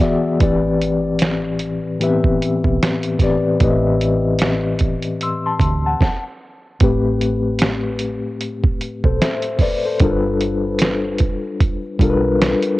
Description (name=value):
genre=lo-fi hip hop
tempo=75 BPM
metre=4/4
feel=swing 58% on 16ths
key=A dorian, A minor from 6.8 s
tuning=A4 = 441 Hz
part: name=mellow reed electric piano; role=accompaniment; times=0.0-12.8 s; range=A2 to E6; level=-18 LUFS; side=left 2 dB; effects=fast tremolo, cassette tape, low-pass filter
part: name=lo-fi sampler-style drum kit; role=drums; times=0.0-12.8 s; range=hi-hat, kick drum, snare drum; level=-18 LUFS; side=right 2 dB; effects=vintage 12-bit sampler grit, cassette tape
part: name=deep dub fingered electric bass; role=bass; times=0.4-12.5 s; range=G1 to D2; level=-24 LUFS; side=right 2 dB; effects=none
room=light reverb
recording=home recording on cassette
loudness=-16 LUFS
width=side -18 dB against mid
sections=0.0-6.8 A section; 6.8-12.8 B section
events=reed electric piano fill 0.0-0.4; stop 6.0-6.8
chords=0.4 Am11; 6.8 Am7; 10.0 G9